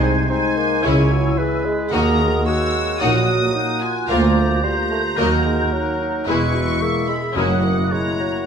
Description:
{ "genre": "classical, dramatic, fast romantic movement for symphony orchestra", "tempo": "110 BPM", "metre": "4/4", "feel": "rubato", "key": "unclear", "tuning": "A4 = 440 Hz", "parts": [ { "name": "rich symphonic violin section", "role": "melody", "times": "0.0-8.5 s", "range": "F#5 to E6", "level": "-27 LUFS", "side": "left 2 dB", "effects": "none" }, { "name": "clear oboe", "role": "second line", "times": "0.0-8.5 s", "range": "A#4 to E5", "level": "-28 LUFS", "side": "right 1 dB", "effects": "none" }, { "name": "large flute ensemble", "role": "second line", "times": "0.0-8.5 s", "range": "D#6 to G#6", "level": "-27 LUFS", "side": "left 1 dB", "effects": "none" }, { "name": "mellow clarinet", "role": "second line", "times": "0.0-8.5 s", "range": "D#4 to G#4", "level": "-27 LUFS", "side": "left 1 dB", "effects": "none" }, { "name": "mellow bassoon", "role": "accompaniment", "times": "0.0-8.5 s", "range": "E3 to B#3", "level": "-26 LUFS", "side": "right 3 dB", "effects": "none" }, { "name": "mellow French horn section", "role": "sustained chords", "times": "0.0-8.5 s", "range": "G#3 to F#4", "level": "-26 LUFS", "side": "left 5 dB", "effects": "none" }, { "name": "clear symphonic double bass section", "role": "bass", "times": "0.0-7.8 s", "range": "E1 to D#2", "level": "-24 LUFS", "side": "right 2 dB", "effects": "none" }, { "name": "dark chamber cello section", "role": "bass", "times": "0.0-7.8 s", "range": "D2 to C#3", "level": "-23 LUFS", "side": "right 2 dB", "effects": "none" }, { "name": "warm symphonic violin section", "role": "second line", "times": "0.8-7.6 s", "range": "F#4 to F#5", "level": "-28 LUFS", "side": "left 2 dB", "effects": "none" }, { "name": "rich symphonic viola section", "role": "accompaniment", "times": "0.8-7.6 s", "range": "F#3 to F#4", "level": "-25 LUFS", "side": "right 1 dB", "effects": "none" }, { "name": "timpani", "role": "percussion", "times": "7.4-8.2 s", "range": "F#2", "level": "-26 LUFS", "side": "left 2 dB", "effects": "none" } ], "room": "moderate scoring stage reverb, RT60 1.6 s", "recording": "none", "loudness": "-16 LUFS", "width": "side -7 dB against mid", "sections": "0.0-8.5 A section", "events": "none", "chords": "0.0 G#/B#; 0.8 C#m; 1.9 D#m; 4.1 A#/D; 5.2 D#m; 6.3 E; 7.4 F#7", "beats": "0.29 0.84 1.38 | 1.92 2.46 3.00 3.54 | 4.09 4.63 5.18 5.73 | 6.28 6.82 7.36 7.92" }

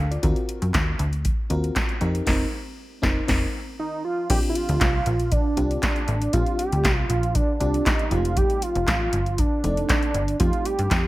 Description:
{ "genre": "early-eighties boogie funk", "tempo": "118 BPM", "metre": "4/4", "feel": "straight", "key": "Bb major", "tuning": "A4 = 440 Hz", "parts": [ { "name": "FM electric piano with soft pad layer", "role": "accompaniment", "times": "0.0-11.0 s", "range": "Ab3 to F5", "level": "-30 LUFS", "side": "left 2 dB", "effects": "chorus, tremolo" }, { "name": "plucky analog bass", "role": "bass", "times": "0.0-11.1 s", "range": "F1 to G2", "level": "-24 LUFS", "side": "equal", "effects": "none" }, { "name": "electro analog drum machine", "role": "drums", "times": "0.1-11.0 s", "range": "crash cymbal, handclaps, hi-hat, kick drum, snare drum", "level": "-24 LUFS", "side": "equal", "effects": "gated reverb" }, { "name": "fat analog lead", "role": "melody", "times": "3.8-11.1 s", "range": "D4 to G4", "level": "-25 LUFS", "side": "right 2 dB", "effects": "chorus" } ], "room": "little or no reverb", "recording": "none", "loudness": "-20 LUFS", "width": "side -17 dB against mid", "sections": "0.0-4.3 A section; 4.3-11.1 B section", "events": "band accent 2.3-4.3", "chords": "0.2 Ebm6; 2.0 F7sus4; 4.3 Bb6; 8.1 F9", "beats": "| 0.23 0.74 1.25 1.76 | 2.27 2.77 3.28 3.79 | 4.30 4.81 5.32 5.83 | 6.33 6.84 7.35 7.86 | 8.37 8.88 9.38 9.89 | 10.40 10.91" }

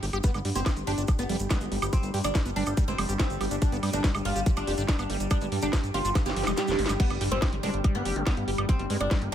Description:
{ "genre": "psychedelic trance", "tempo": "142 BPM", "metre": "4/4", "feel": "straight", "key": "G major", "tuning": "A4 = 440 Hz", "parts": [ { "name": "liquid acid bass", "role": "riff", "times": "0.0-9.3 s", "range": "F3 to G4", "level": "-35 LUFS", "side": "right 1 dB", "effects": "chorus, auto-pan, sidechain pumping, ping-pong delay" }, { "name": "fat analog bass", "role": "bass", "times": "0.0-9.3 s", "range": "F1 to G2", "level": "-31 LUFS", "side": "equal", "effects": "tube saturation" }, { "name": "drum and bass drum kit", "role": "drums", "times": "0.0-9.3 s", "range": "crash cymbal, hi-hat, snare drum, woodblock", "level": "-33 LUFS", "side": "right 1 dB", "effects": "none" }, { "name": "ethereal airy pad", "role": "texture", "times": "0.0-9.3 s", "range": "D4 to G5", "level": "-37 LUFS", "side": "equal", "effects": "ensemble chorus, built-in reverb, sidechain pumping" }, { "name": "oud", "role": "melody", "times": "0.2-9.3 s", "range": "B3 to G4", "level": "-32 LUFS", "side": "right 1 dB", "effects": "phaser, sidechain pumping, tape echo" }, { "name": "overtone-sweeping drone", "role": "sustained chords", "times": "1.4-9.3 s", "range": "G3", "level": "-38 LUFS", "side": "left 1 dB", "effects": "chorus, built-in reverb, sidechain pumping" }, { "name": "electronic kick drum", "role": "drums", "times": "0.2-9.2 s", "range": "none", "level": "-25 LUFS", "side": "equal", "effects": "none" }, { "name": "maracas", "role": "percussion", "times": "0.2-7.0 s", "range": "none", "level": "-42 LUFS", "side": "right 3 dB", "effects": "none" }, { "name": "swell and impact", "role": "sound effects", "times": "6.4-8.7 s", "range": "none", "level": "-38 LUFS", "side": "right 1 dB", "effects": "none" } ], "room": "digital ambience", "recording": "none", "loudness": "-24 LUFS", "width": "side -10 dB against mid", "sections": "0.0-7.0 A section; 7.0-9.3 B section", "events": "drum fill 6.2-7.0; swell 6.4-7.0; kick drops out 6.6-7.0; drop 7.0-9.3; impact 7.0-8.7", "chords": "0.0 G5", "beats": "| 0.24 0.66 1.08 1.50 | 1.93 2.35 2.77 3.19 | 3.62 4.04 4.46 4.89 | 5.31 5.73 6.15 6.58 | 7.00 7.42 7.84 8.27 | 8.69 9.11" }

